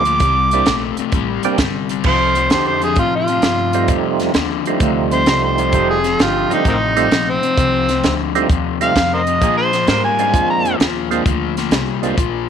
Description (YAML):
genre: electric blues shuffle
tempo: 130 BPM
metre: 4/4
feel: swing 68% on 8ths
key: F mixolydian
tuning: A4 = 440 Hz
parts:
  - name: overdriven harmonica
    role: melody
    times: 0.0-10.7 s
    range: Bb3 to D6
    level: -17 LUFS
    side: right 1 dB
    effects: none
  - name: percussive tonewheel organ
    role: accompaniment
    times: 0.0-12.2 s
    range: G3 to G4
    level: -21 LUFS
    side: right 12 dB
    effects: slow rotary speaker, chorus vibrato
  - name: overdriven semi-hollow guitar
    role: riff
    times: 0.0-12.5 s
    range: F2 to A3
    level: -21 LUFS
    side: left 13 dB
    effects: none
  - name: upright bass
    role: bass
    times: 0.0-12.5 s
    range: F1 to Bb2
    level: -24 LUFS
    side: equal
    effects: none
  - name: compact cocktail drum kit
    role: drums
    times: 0.1-12.3 s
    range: crash cymbal, hi-hat, kick drum, snare drum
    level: -19 LUFS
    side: right 1 dB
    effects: none
  - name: warm saxophone section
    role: stabs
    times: 2.0-10.5 s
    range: A3 to Bb4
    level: -25 LUFS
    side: right 12 dB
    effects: none
room: light reverb, studio reverb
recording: 1960s-style stereo with parts hard left and right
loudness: -14 LUFS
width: side -8 dB against mid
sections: 0.0-2.0 A section; 2.0-12.5 A section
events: none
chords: 0.2 C7; 2.0 F7; 9.4 Bb7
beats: | 0.20 0.67 1.13 1.59 | 2.05 2.51 2.97 3.43 | 3.89 4.35 4.81 5.27 | 5.73 6.20 6.66 7.12 | 7.58 8.04 8.50 8.96 | 9.42 9.88 10.34 10.80 | 11.26 11.72 12.18